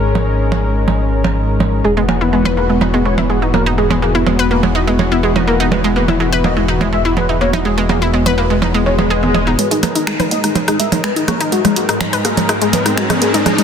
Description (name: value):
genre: melodic techno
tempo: 124 BPM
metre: 4/4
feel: straight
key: G# minor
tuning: A4 = 440 Hz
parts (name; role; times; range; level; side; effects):
- lush unison pad; sustained chords; 0.0-13.6 s; E3 to A#4; -21 LUFS; left 1 dB; chorus
- dark detuned saw bass; bass; 0.0-13.4 s; E1 to G#2; -19 LUFS; left 1 dB; high-pass filter
- analog drone; drone; 0.0-13.6 s; G#2 to G#3; -26 LUFS; left 1 dB; none
- techno drum kit; drums; 0.2-13.6 s; finger snaps, hi-hat, percussion blips, rim click; -19 LUFS; right 4 dB; soft clipping on snare
- wide unison lead; melody; 1.8-13.6 s; G#3 to E5; -19 LUFS; left 2 dB; wide subtle chorus, digital delay
- analog pluck; arpeggios; 1.8-13.6 s; D#3 to B4; -18 LUFS; right 1 dB; chorus, digital delay
- swell and riser; sound effects; 8.8-13.6 s; none; -22 LUFS; left 1 dB; none
room: light reverb, digital ambience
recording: dense, heavily limited modern master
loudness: -12 LUFS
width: side -7 dB against mid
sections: 0.0-9.6 A section; 9.6-13.6 B section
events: swell 8.8-9.6; build-up 9.6-13.6; riser 9.6-13.6; filter sweep on analog synth lead 9.6-13.6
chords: 0.0 G#5; 1.8 E; 9.6 G#5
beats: 0.39 0.88 1.36 | 1.85 2.33 2.81 3.30 | 3.78 4.26 4.75 5.23 | 5.72 6.20 6.68 7.17 | 7.65 8.14 8.62 9.10 | 9.59 10.07 10.55 11.04 | 11.52 12.01 12.49 12.97 | 13.46